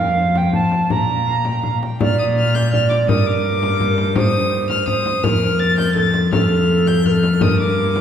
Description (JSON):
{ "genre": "classical, renaissance-style consort dance", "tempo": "166 BPM", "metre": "3/4", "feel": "straight", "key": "Bb major", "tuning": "A4 = 440 Hz", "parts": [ { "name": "rich violin", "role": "melody", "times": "0.0-8.0 s", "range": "Bb4 to A6", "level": "-23 LUFS", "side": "left 4 dB", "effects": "none" }, { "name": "mellow tenor recorder", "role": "second line", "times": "0.0-8.0 s", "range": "A4 to Bb5", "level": "-20 LUFS", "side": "right 3 dB", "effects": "none" }, { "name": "rich cello", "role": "bass", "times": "0.0-8.0 s", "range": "F2 to Bb2", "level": "-19 LUFS", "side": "left 2 dB", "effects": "none" }, { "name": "frame drum", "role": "percussion", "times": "0.4-8.0 s", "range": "none", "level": "-22 LUFS", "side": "left 2 dB", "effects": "none" } ], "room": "wet church reverb, RT60 2.7 s", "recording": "heard from further back in the room", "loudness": "-15 LUFS", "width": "side -9 dB against mid", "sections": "0.0-2.0 A section; 2.0-8.0 A section", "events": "none", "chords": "0.2 F; 0.9 Bb; 3.1 Gm; 5.2 Fsus4; 7.4 Gm", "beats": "0.18 0.54 | 0.90 1.27 1.64 | 2.00 2.36 2.72 | 3.08 3.44 3.80 | 4.16 4.52 4.88 | 5.24 5.60 5.97 | 6.33 6.70 7.06 | 7.42 7.78" }